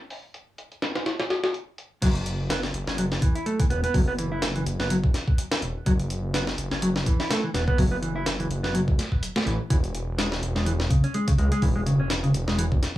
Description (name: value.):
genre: breakbeat, breaks.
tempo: 125 BPM.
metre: 4/4.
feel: swing 56% on 16ths.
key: F# minor.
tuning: A4 = 439 Hz.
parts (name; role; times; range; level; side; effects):
breakbeat sampler-style drum kit; drums; 0.1-13.0 s; crash cymbal, hi-hat, kick drum, snare drum; -25 LUFS; equal; low-pass filter on snare, low-pass filter on hats, low-pass filter on cymbals, low-pass filter on kick.
mellow electric guitar; riff; 2.0-12.6 s; C#3 to E4; -26 LUFS; equal; tape echo.
detuned saw bass; bass; 2.0-12.8 s; E1 to C#2; -28 LUFS; equal; none.
room: little or no reverb.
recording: dry, gritty hardware recording, small room ambience.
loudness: -22 LUFS.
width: side -15 dB against mid.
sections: 0.0-2.0 A section; 2.0-13.0 B section.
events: drop 2.0-13.0.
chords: 0.0 N.C.; 2.0 F#7(no3); 9.7 E.